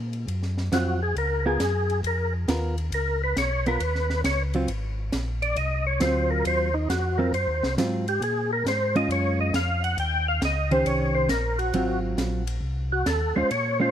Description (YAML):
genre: soul jazz organ trio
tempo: 136 BPM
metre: 4/4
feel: swing 67% on 8ths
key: Ab mixolydian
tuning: A4 = 440 Hz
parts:
  - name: mellow tonewheel organ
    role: bass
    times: 0.0-13.9 s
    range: Ab1 to Bb2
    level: -27 LUFS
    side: equal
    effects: slow rotary speaker
  - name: compact cocktail drum kit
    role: drums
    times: 0.1-13.6 s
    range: hi-hat, ride cymbal, snare drum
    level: -33 LUFS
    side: right 1 dB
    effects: none
  - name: percussive tonewheel organ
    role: melody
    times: 0.7-13.9 s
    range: Eb4 to G5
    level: -26 LUFS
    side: left 1 dB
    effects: slow rotary speaker, overdrive, chorus vibrato
  - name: hollow-body jazz guitar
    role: accompaniment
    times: 0.7-13.9 s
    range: Eb3 to C5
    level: -27 LUFS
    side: right 2 dB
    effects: none
room: little or no reverb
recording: none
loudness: -22 LUFS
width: side -10 dB against mid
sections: 0.0-13.9 A section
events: tonewheel organ solo 0.0-13.9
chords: 0.0 Ab13; 1.1 Db13; 4.7 Ab13; 8.2 Bbm7; 10.0 Eb6; 11.7 Ab13; 12.6 F5